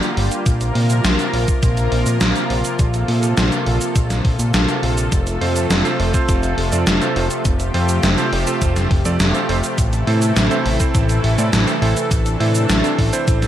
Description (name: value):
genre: synthwave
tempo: 103 BPM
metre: 4/4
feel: straight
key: unclear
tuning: A4 = 442 Hz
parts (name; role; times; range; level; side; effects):
- lush unison pad; sustained chords; 0.0-13.5 s; C3 to Bb4; -21 LUFS; equal; chorus, sidechain pumping
- gated 80s digital drum machine; drums; 0.0-13.5 s; cabasa, hi-hat, snare drum; -21 LUFS; equal; gated reverb, gated reverb snare
- fat analog bass; bass; 0.2-13.5 s; F1 to Bb2; -18 LUFS; equal; tube saturation
- electronic kick drum; drums; 0.5-13.4 s; none; -18 LUFS; equal; none
- bright electric grand piano; stabs; 5.4-13.5 s; C4 to D5; -24 LUFS; right 4 dB; digital delay
room: moderate plate reverb, RT60 1.2 s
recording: bright 1980s-style digital production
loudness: -15 LUFS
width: side -11 dB against mid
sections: 0.0-13.5 A section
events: none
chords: 0.5 Bbsus2; 5.1 F; 9.8 Am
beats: | 0.46 1.04 1.63 2.21 | 2.79 3.37 3.96 4.54 | 5.12 5.70 6.29 6.87 | 7.45 8.03 8.62 9.20 | 9.78 10.37 10.95 11.53 | 12.11 12.70 13.28